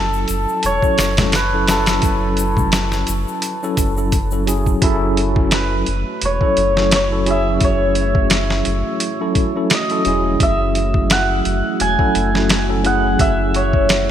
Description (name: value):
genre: trip hop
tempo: 86 BPM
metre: 4/4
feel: swing 55% on 16ths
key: F# minor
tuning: A4 = 441 Hz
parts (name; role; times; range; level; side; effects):
- hammered dulcimer; melody; 0.0-14.1 s; A4 to G#5; -20 LUFS; equal; vintage 12-bit sampler grit, dub echo
- tine electric piano; accompaniment; 0.0-14.1 s; F#3 to A4; -21 LUFS; equal; medium stereo tremolo, harmonic tremolo, tape echo
- warm sub bass; bass; 0.0-14.1 s; E1 to F#1; -21 LUFS; equal; none
- tube shaker and congas; percussion; 0.1-4.8 s; none; -27 LUFS; left 2 dB; none
- boom bap sampler-style drum kit; drums; 0.3-14.1 s; hi-hat, kick drum, snare drum; -19 LUFS; equal; studio reverb
- deep dark ambient pad; sustained chords; 5.8-14.1 s; A3 to F#4; -26 LUFS; right 1 dB; chorus, built-in reverb
room: moderate lush hall reverb, RT60 2.8 s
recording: bright 1980s-style digital production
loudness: -14 LUFS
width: side -10 dB against mid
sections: 0.0-4.8 A section; 4.8-14.1 B section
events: none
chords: 0.0 F#m7